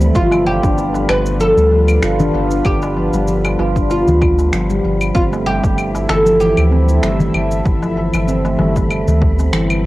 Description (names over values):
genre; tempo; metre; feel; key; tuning
organic downtempo; 96 BPM; 4/4; swing 55% on 16ths; G mixolydian; A4 = 440 Hz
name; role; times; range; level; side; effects
warm analog pad; sustained chords; 0.0-9.9 s; G3 to E5; -25 LUFS; right 1 dB; chorus, sidechain pumping, cassette tape
handpan; arpeggios; 0.0-9.9 s; E3 to F4; -19 LUFS; equal; cassette tape, analog delay
round analog bass; bass; 0.0-9.9 s; G1 to D2; -18 LUFS; equal; sidechain pumping
electronic shaker, claves and finger snaps; drums; 0.0-9.8 s; none; -25 LUFS; left 1 dB; overdrive, cassette tape
wind-like tuned noise texture; texture; 0.0-9.9 s; B3 to B5; -31 LUFS; equal; built-in reverb, cassette tape
oud; melody; 0.2-9.5 s; F4 to B4; -18 LUFS; equal; cassette tape, tape echo
electronic kick drum; drums; 0.2-9.4 s; none; -18 LUFS; equal; overdrive, cassette tape
darbuka; percussion; 0.3-9.5 s; none; -22 LUFS; left 1 dB; none
room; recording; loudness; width
light reverb; home recording on cassette; -12 LUFS; side -17 dB against mid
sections
0.0-9.9 A section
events
none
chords
0.2 G7; 5.2 Fmaj9/G (rootless)